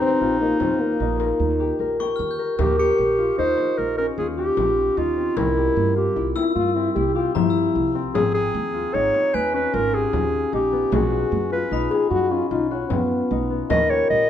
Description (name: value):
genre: contemporary instrumental, chamber music in an uneven meter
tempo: 151 BPM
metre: 7/4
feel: straight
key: Eb mixolydian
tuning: A4 = 441 Hz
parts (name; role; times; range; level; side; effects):
- warm clarinet; melody; 0.0-14.3 s; Eb4 to Eb5; -22 LUFS; right 1 dB; none
- mellow French horn; second line; 0.0-1.6, 6.4-13.6 s; Bb3 to Ab4; -22 LUFS; left 3 dB; none
- concert harp; arpeggios; 0.0-14.3 s; F3 to G5; -24 LUFS; left 5 dB; none
- upright bass; bass; 0.0-14.3 s; Ab1 to G2; -27 LUFS; right 4 dB; none
- frame drum; percussion; 0.6-13.9 s; none; -31 LUFS; left 5 dB; none
- glockenspiel with brass mallets; texture; 2.0-13.1 s; Ab5 to Db7; -34 LUFS; left 2 dB; none
room: light reverb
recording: minimal, uncompressed stereo recording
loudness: -19 LUFS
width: side -10 dB against mid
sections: 0.0-2.6 A section; 2.6-14.3 B section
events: none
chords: 0.0 Ebadd9; 2.6 Eb; 5.4 C; 8.1 Ab5; 10.9 B; 13.7 Eb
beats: 0.21 0.61 1.00 1.40 1.80 2.19 | 2.59 2.99 3.39 3.78 4.18 4.58 4.97 | 5.37 5.77 6.16 6.56 6.96 7.36 7.75 | 8.15 8.54 8.94 9.34 9.73 10.13 10.53 | 10.93 11.32 11.72 12.12 12.51 12.91 13.31 | 13.70 14.10